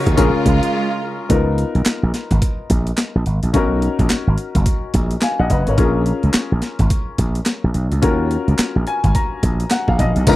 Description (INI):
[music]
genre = R&B, new jack swing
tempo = 107 BPM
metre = 4/4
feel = swing 61% on 16ths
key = Eb minor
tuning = A4 = 440 Hz
[part]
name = warm baby grand piano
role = accompaniment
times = 0.0-10.4 s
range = Cb4 to Bb5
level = -21 LUFS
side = left 4 dB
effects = none
[part]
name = clear studio string section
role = sustained chords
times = 0.0-1.3, 10.3-10.4 s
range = Db3 to Bb4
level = -22 LUFS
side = right 4 dB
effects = none
[part]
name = slap bass with an envelope filter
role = bass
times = 0.1-10.4 s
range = F#1 to Eb2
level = -17 LUFS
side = equal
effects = none
[part]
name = breakbeat sampler-style drum kit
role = drums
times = 0.1-10.4 s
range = crash cymbal, handclaps, hi-hat, kick drum, snare drum, tambourine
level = -18 LUFS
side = equal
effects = overdrive
[sound]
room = little or no reverb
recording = dry, close 1970s-style studio recording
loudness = -15 LUFS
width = side -16 dB against mid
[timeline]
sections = 0.0-1.3 A section; 1.3-10.3 B section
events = break 0.7-1.3; grand piano fill 8.6-10.3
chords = 0.2 Bbm7; 1.3 Db13; 3.5 Bmaj9; 5.8 Bbm7; 8.0 Ebm7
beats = 0.18 0.74 | 1.30 1.86 2.42 2.98 | 3.54 4.10 4.66 5.22 | 5.78 6.34 6.91 7.47 | 8.03 8.59 9.15 9.71 | 10.27